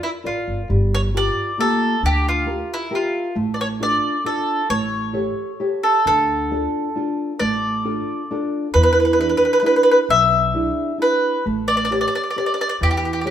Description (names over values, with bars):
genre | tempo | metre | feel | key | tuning
italian folk, Italian serenade | 134 BPM | 3/4 | rubato | D harmonic minor | A4 = 440 Hz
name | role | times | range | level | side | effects
mandolin | melody | 0.0-13.3 s | E4 to E5 | -19 LUFS | equal | none
nylon-string guitar | accompaniment | 0.0-13.3 s | B2 to D5 | -23 LUFS | equal | none
upright bass | bass | 0.3-13.3 s | G1 to E2 | -24 LUFS | equal | none
room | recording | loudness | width
wet stone room reverb, RT60 1.0 s | band playing live in one room | -17 LUFS | side -10 dB against mid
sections
0.0-13.3 A section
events
none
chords
0.0 Bb; 0.7 Gm7; 3.4 Dm/A; 4.7 A7; 6.1 Dm; 8.8 E7; 11.5 A7